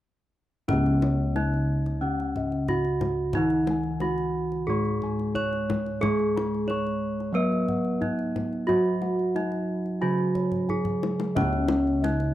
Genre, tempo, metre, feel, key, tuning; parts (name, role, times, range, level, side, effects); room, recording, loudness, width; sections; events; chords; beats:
Javanese gamelan; 90 BPM; 4/4; straight; C# slendro; A4 = 440 Hz
gamelan-type bronze metallophone; melody; 0.7-12.3 s; C#4 to C#5; -28 LUFS; right 1 dB
gamelan-type bronze metallophone; accompaniment; 0.7-12.3 s; C#3 to B3-40c; -29 LUFS; equal
gamelan-type bossed gongs; arpeggios; 0.7-12.3 s; C#5 to C#6; -36 LUFS; left 5 dB
gamelan-type bossed gongs; bass; 0.7-12.3 s; C#2 to G#4+20c; -29 LUFS; equal
kendang; percussion; 0.7-12.3 s; -33 LUFS; left 3 dB
gamelan-type bronze metallophone; arpeggios; 11.4-12.3 s; C#5 to D#5+40c; -38 LUFS; right 5 dB
light reverb, small room ambience; dry, close 1970s-style studio recording; -23 LUFS; side -13 dB against mid
0.7-11.4 A section
drum fill 10.5-11.4
| 0.69 1.36 2.02 2.69 | 3.36 4.03 4.69 5.36 | 6.03 6.69 7.36 8.03 | 8.69 9.36 10.03 10.69 | 11.36 12.03